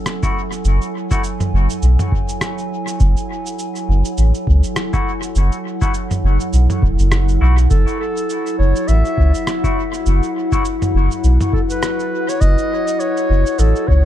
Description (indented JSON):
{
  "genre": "ambient dub",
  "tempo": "102 BPM",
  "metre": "4/4",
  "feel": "swing 57% on 16ths",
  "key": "F# minor",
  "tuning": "A4 = 439 Hz",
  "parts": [
    { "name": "warbly tape-like pad", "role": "sustained chords", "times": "0.0-14.1 s", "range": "F#3 to G#5", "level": "-22 LUFS", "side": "left 1 dB", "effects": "chorus, built-in reverb" },
    { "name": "lo-fi sampler-style drum kit", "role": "drums", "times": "0.1-13.9 s", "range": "cabasa, rim click, toms", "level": "-25 LUFS", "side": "right 1 dB", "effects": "dub echo" },
    { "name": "clean electric guitar", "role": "stabs", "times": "0.2-1.2, 4.9-10.6 s", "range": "A3 to F#4", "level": "-28 LUFS", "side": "left 3 dB", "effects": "dub echo" },
    { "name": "electronic kick drum", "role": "drums", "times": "0.2-14.0 s", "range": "none", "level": "-19 LUFS", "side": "equal", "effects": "none" },
    { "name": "soft dub sub bass", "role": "bass", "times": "0.6-14.0 s", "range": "E1 to C#2", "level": "-12 LUFS", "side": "equal", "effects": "none" },
    { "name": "warm clarinet", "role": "melody", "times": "7.7-14.1 s", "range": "A4 to E5", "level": "-23 LUFS", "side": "right 1 dB", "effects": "dub echo" }
  ],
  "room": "little or no reverb",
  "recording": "echo-heavy mix",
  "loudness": "-14 LUFS",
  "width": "side -12 dB against mid",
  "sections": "0.0-14.1 A section",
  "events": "none",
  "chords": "0.0 F#m7"
}